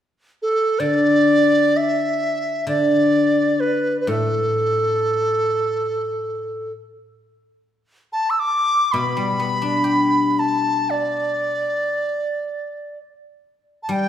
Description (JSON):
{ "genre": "chinese traditional, Chinese chamber ensemble", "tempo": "free time", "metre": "none", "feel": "none", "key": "D zhi mode", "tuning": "A4 = 440 Hz", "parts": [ { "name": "bright reedy large dizi", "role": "melody", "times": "0.4-14.1 s", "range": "A4 to E6", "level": "-19 LUFS", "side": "right 1 dB", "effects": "none" }, { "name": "guzheng", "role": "accompaniment", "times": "0.8-14.1 s", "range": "A2 to G4", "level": "-21 LUFS", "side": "left 3 dB", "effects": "none" } ], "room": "wet recital hall reverb, RT60 1.6 s", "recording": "heard from further back in the room", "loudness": "-17 LUFS", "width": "side -10 dB against mid", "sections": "0.0-13.9 A section", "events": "none", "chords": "none", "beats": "free time" }